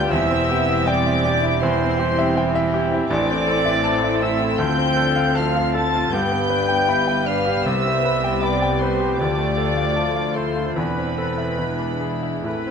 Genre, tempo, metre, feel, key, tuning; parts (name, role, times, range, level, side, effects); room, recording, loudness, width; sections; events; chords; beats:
classical; 65-83 BPM; 4/4; rubato; A4 = 440 Hz
bright concert grand piano; melody; 0.0-12.7 s; A1 to B5; -23 LUFS; left 2 dB
warm studio violin section; melody; 0.0-12.7 s; B5 to A6; -29 LUFS; left 1 dB
bright oboe; second line; 0.0-12.7 s; B4 to A5; -30 LUFS; right 2 dB
dark clarinet; second line; 0.0-12.7 s; B4 to A5; -32 LUFS; left 1 dB
flute section; second line; 0.0-12.7 s; B4 to A5; -30 LUFS; equal
warm studio violin section; second line; 0.0-12.7 s; G3 to B4; -30 LUFS; left 5 dB
warm bassoon; accompaniment; 0.0-12.7 s; B3 to G4; -29 LUFS; right 3 dB
warm studio viola section; accompaniment; 0.0-12.7 s; E3 to C4; -29 LUFS; right 2 dB
warm French horn section; sustained chords; 0.0-12.7 s; G#3 to G4; -29 LUFS; left 5 dB
dark trumpet section; stabs; 0.0-12.7 s; B4 to A5; -28 LUFS; left 1 dB
warm studio cello section; bass; 0.0-12.7 s; C2 to A2; -30 LUFS; right 4 dB
warm studio double bass section; bass; 0.0-12.7 s; E1 to D2; -29 LUFS; right 5 dB
moderate scoring stage reverb, RT60 1.9 s; close, detailed microphones; -18 LUFS; side -6 dB against mid
0.0-12.7 A section
0.1 C/E; 3.1 Am; 4.6 Dm7; 6.1 G; 7.7 Cmaj7; 9.2 Dm; 10.8 Am/E; 11.6 E7
| 0.11 0.87 1.61 2.37 | 3.10 3.84 4.58 5.35 | 6.13 6.88 7.66 8.42 | 9.19 9.96 10.76 11.59 | 12.45